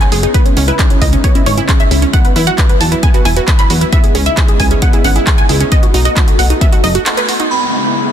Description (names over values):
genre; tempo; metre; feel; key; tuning
uplifting trance; 134 BPM; 4/4; straight; C# minor; A4 = 440 Hz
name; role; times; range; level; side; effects
wide unison pluck; melody; 0.0-7.5 s; C#4 to B5; -16 LUFS; right 1 dB; phaser, sidechain pumping, tape echo
lush unison pad; sustained chords; 0.0-8.1 s; C#3 to D#5; -22 LUFS; left 2 dB; chorus, sidechain pumping
techno drum kit; drums; 0.0-7.5 s; handclaps, hi-hat; -19 LUFS; right 1 dB; sidechain pumping on hats, low-pass filter on hats, low-pass filter on snare, low-pass filter on room
wide unison pluck; arpeggios; 0.1-7.5 s; B3 to B4; -21 LUFS; right 4 dB; sidechain pumping, tape echo
plucky analog bass; bass; 0.1-7.0 s; E1 to E2; -14 LUFS; equal; sidechain pumping
electronic kick drum; drums; 0.3-6.7 s; none; -12 LUFS; equal; none
glassy synth bell; second line; 7.5-8.1 s; B5; -16 LUFS; right 5 dB; chorus, tremolo, digital delay
downlifter; sound effects; 7.5-8.1 s; none; -16 LUFS; left 2 dB; none
room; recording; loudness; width
little or no reverb; dense, heavily limited modern master; -9 LUFS; side -10 dB against mid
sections
0.0-7.5 A section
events
break 7.1-7.5; band accent 7.1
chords
0.3 C#m7; 2.1 Esus2; 3.9 C#m7; 5.7 B7; 7.5 C#m7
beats
| 0.34 0.79 1.24 1.69 | 2.13 2.58 3.03 3.48 | 3.93 4.37 4.82 5.27 | 5.72 6.17 6.61 7.06 | 7.51 7.96